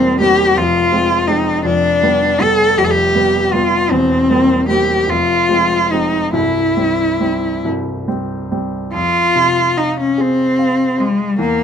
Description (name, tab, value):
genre	classical, romantic duo for cello and grand piano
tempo	46-57 BPM (dotted quarters)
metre	6/8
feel	rubato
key	F minor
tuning	A4 = 439 Hz
part	rich cello	melody	0.0-11.6 s	Ab3 to A4	-13 LUFS	left 1 dB	none
part	clear baby grand piano	accompaniment	0.0-11.6 s	C1 to C6	-18 LUFS	equal	none
room	light reverb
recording	minimal, uncompressed stereo recording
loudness	-12 LUFS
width	side -8 dB against mid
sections	0.0-8.9 A section; 8.9-11.6 B section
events	none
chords	0.0 C7/E; 0.6 Fm; 1.6 G7/F; 3.9 C7/E; 5.1 Fm; 6.3 C; 8.9 Fm